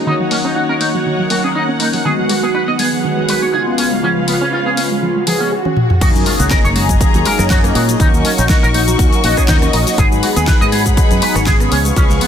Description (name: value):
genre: nu-disco, nu disco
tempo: 121 BPM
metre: 4/4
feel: swing 54% on 16ths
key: F# major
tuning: A4 = 441 Hz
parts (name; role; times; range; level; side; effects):
- mellow synth brass; accompaniment; 0.0-12.3 s; C#3 to D#5; -18 LUFS; equal; chorus, phaser, sidechain pumping, dub echo
- rich symphonic string section; sustained chords; 0.0-12.3 s; B3 to C#6; -22 LUFS; left 2 dB; sidechain pumping
- soft round pluck; arpeggios; 0.1-12.3 s; D#3 to G#4; -23 LUFS; right 2 dB; chorus, cassette tape, sidechain pumping, dub echo
- electric guitar with an envelope filter; riff; 0.1-12.3 s; B3 to D#5; -20 LUFS; right 1 dB; lush chorus, dub echo
- pop drum kit; drums; 0.3-12.3 s; crash cymbal, hi-hat, rim click, shaker, snare drum, toms; -20 LUFS; left 2 dB; low-pass filter on hats, studio reverb, low-pass filter on toms, low-pass filter on cymbals, low-pass filter on perc, low-pass filter on snare
- swell and impact; sound effects; 5.2-8.0 s; none; -24 LUFS; right 1 dB; none
- fingered electric bass; bass; 6.0-12.2 s; F#1 to A#2; -17 LUFS; equal; none
- electronic kick drum; drums; 6.0-12.1 s; none; -14 LUFS; equal; studio reverb
room: moderate echo chamber reverb, RT60 1.3 s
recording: dense, heavily limited modern master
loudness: -11 LUFS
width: side -8 dB against mid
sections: 0.0-6.0 A section; 6.0-12.3 B section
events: filter sweep on drum 0.0-6.0; filter sweep on synth arpeggio sound 0.0-6.0; swell 5.2-6.0; drum fill 5.6-6.0; drop 6.0-12.3; impact 6.0-8.0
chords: 0.1 D#m7; 2.0 G#m7; 3.8 C#7; 6.0 F#69; 8.0 D#m7; 10.0 G#m7; 11.7 C#7